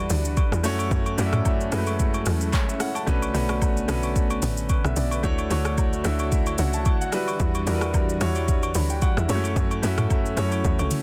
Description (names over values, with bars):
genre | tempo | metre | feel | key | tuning
amapiano | 111 BPM | 4/4 | swing 55% on 16ths | unclear | A4 = 439 Hz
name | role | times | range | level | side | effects
clear grand piano | accompaniment | 0.0-11.0 s | G3 to B5 | -30 LUFS | equal | none
lush unison pad | sustained chords | 0.0-11.0 s | D3 to C#5 | -36 LUFS | equal | chorus, sidechain pumping
tight log drum bass | bass | 0.0-10.9 s | A1 to F#2 | -28 LUFS | equal | none
afro-pop drum kit | drums | 0.1-11.0 s | handclaps, hi-hat, kick drum, rim click, shaker, toms | -27 LUFS | equal | none
agogo bells and woodblock | percussion | 0.4-10.9 s | none | -38 LUFS | equal | none
room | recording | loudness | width
digital ambience | dense, heavily limited modern master | -24 LUFS | mono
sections
0.0-11.0 A section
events
drum fill 10.6-11.0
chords
0.0 Em9; 0.6 F#m7; 3.1 Bm9; 5.2 Dmaj9; 7.1 Em9; 9.3 F#m7